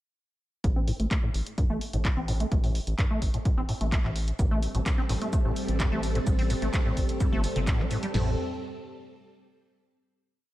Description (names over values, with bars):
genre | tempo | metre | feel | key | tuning
acid house | 128 BPM | 4/4 | straight | unclear | A4 = 440 Hz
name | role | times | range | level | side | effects
acid bass, square | riff | 0.6-8.4 s | G2 to C4 | -32 LUFS | equal | tube saturation, lush chorus, sidechain pumping, analog delay
round analog bass | bass | 0.6-8.4 s | G1 to A1 | -29 LUFS | equal | sidechain pumping
punchy analog drum machine | drums | 0.6-8.3 s | crash cymbal, kick drum, snare drum, toms | -27 LUFS | equal | small room ambience
punchy analog drum machine | drums | 0.6-8.1 s | handclaps, hi-hat | -36 LUFS | equal | small room ambience
string machine, full ensemble | sustained chords | 4.4-8.4 s | G3 to A4 | -33 LUFS | equal | ensemble chorus, sidechain pumping
dusty soul sampler-style drum kit | drums | 4.4-8.1 s | hi-hat, shaker, snare drum | -46 LUFS | right 1 dB | sidechain pumping on perc, high-pass filter on perc, small room ambience, high-pass filter on snare, sidechain pumping on hats, high-pass filter on hats
room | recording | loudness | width
light reverb, digital ambience | none | -25 LUFS | side -15 dB against mid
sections
0.6-8.1 groove; 8.1-10.0 final chord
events
filter sweep on acid bass 0.6-8.1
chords
0.6 Am7